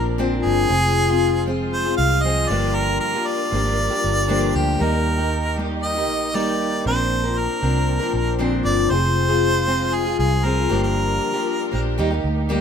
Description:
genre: pop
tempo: 117 BPM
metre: 4/4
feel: straight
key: Eb major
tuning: A4 = 440 Hz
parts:
  - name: clear harmonica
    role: melody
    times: 0.0-11.8 s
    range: G4 to F5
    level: -22 LUFS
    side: right 1 dB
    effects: none
  - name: picked steel-string acoustic guitar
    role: accompaniment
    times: 0.0-12.6 s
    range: G2 to Bb4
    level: -22 LUFS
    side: left 3 dB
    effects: none
  - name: warm studio string section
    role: sustained chords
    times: 0.0-12.6 s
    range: Eb3 to Bb4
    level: -31 LUFS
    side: equal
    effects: none
  - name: vintage muted fingered electric bass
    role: bass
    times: 0.0-12.6 s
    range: F1 to Eb2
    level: -22 LUFS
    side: right 1 dB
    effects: none
room: moderate studio reverb, RT60 0.8 s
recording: minimal, uncompressed stereo recording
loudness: -18 LUFS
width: side -7 dB against mid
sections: 0.0-12.6 A section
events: none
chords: 0.0 Bbadd9; 0.7 Fm; 2.5 Gm7; 4.8 Eb; 6.8 Bbadd9; 8.9 Fm; 10.7 Gm7; 12.0 Eb

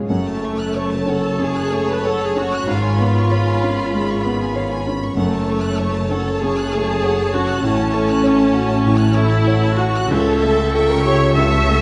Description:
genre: classical, romantic movement for piano and orchestra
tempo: 96 BPM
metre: 4/4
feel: rubato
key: F# minor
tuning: A4 = 438 Hz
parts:
  - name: warm concert grand piano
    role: melody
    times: 0.0-11.8 s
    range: C#2 to C#5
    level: -22 LUFS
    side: equal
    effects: none
  - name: dark symphonic cello section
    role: bass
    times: 0.0-11.8 s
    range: F#2 to C#3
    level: -26 LUFS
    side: equal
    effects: none
  - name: warm studio violin section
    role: melody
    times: 0.1-11.8 s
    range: A5 to C#6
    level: -34 LUFS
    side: equal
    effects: none
  - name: clear studio violin section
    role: second line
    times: 0.1-11.8 s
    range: C#5 to F#6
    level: -30 LUFS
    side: equal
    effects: none
  - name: rich studio viola section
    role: accompaniment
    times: 0.1-11.8 s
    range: A3 to E5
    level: -23 LUFS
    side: equal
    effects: none
  - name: clear studio double bass section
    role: bass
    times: 0.1-11.8 s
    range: F#1 to C#2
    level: -26 LUFS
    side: equal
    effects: none
room: moderate scoring stage reverb, RT60 1.7 s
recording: nothing above 10.8 kHz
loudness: -18 LUFS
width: mono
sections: 0.1-11.8 A section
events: none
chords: 0.1 F#m; 2.7 C#7/G#; 5.2 F#m; 7.6 F#m/A; 10.1 A7/C#

